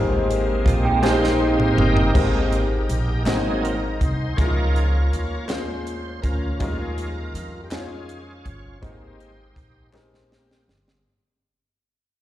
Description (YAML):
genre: slow gospel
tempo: 54 BPM (dotted quarters)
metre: 6/8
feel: straight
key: Ab major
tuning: A4 = 444 Hz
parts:
  - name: clear grand piano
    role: accompaniment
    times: 0.0-11.1 s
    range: Ab2 to Db5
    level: -27 LUFS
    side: left 3 dB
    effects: plate reverb, slapback echo
  - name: bright tonewheel organ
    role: sustained chords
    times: 0.0-10.6 s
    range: F3 to Db5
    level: -26 LUFS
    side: right 1 dB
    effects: slow rotary speaker, overdrive, chorus vibrato, plate reverb
  - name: upright bass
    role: bass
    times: 0.0-11.0 s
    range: G1 to F2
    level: -24 LUFS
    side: equal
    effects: none
  - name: tight funk drum kit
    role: drums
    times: 0.3-11.0 s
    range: crash cymbal, hi-hat, kick drum, snare drum, toms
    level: -23 LUFS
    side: equal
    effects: none
  - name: clean electric guitar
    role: second line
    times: 0.7-2.1 s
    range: C4 to Ab4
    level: -24 LUFS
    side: right 4 dB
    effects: phaser, plate reverb, slapback echo
  - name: group handclap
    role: percussion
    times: 1.0-10.3 s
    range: none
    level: -39 LUFS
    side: left 2 dB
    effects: none
room: light reverb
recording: live gig heard through the venue's PA, recital hall reverb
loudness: -19 LUFS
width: side -13 dB against mid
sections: 0.0-2.1 A section; 2.1-11.0 B section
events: tonewheel organ solo 0.0-2.1, 2.1-11.0; drum fill 1.0-2.1, 9.9-11.0; fade-out 2.1-11.0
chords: 0.0 Abmaj9; 3.3 Ab7; 4.4 Db6; 6.6 Eb9sus4; 8.8 Abmaj9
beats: 1.03 | 2.15 3.26 | 4.38 5.49 | 6.60 7.71 | 8.83 9.94